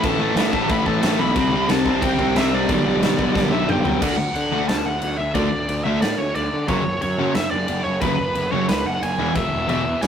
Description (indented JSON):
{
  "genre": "punk rock",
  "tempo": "180 BPM",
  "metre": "4/4",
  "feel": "straight",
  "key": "unclear",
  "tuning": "A4 = 440 Hz",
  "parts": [
    { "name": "smooth overdriven lead guitar", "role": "melody", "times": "0.0-10.1 s", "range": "B4 to B5", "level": "-25 LUFS", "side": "equal", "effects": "none" },
    { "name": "biting overdriven guitar", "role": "riff", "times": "0.0-9.8 s", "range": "E2 to D4", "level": "-23 LUFS", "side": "left 5 dB", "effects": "none" },
    { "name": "overdriven semi-hollow guitar", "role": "riff", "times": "0.0-9.8 s", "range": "E2 to D4", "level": "-26 LUFS", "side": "right 7 dB", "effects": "none" },
    { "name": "thick fuzz guitar", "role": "riff", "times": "0.0-4.0, 9.3-10.1 s", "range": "E2 to C4", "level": "-29 LUFS", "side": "equal", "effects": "none" },
    { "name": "fuzz picked electric bass", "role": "bass", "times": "0.0-10.1 s", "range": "E1 to D3", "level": "-25 LUFS", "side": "equal", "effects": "overdrive" },
    { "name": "big rock drum kit", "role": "drums", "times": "0.0-10.1 s", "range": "crash cymbal, kick drum, snare drum, toms", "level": "-25 LUFS", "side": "right 1 dB", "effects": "none" }
  ],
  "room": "light reverb",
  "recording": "rough rehearsal-room recording, tube saturation, faint mains hum",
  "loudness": "-18 LUFS",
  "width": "side -8 dB against mid",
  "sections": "0.0-4.0 A section; 4.0-10.1 B section",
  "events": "drum fill 3.3-4.0; half time 4.0-10.1",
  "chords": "0.0 A5; 1.4 C5; 2.7 G/B; 4.0 D; 6.7 F#5; 9.2 E"
}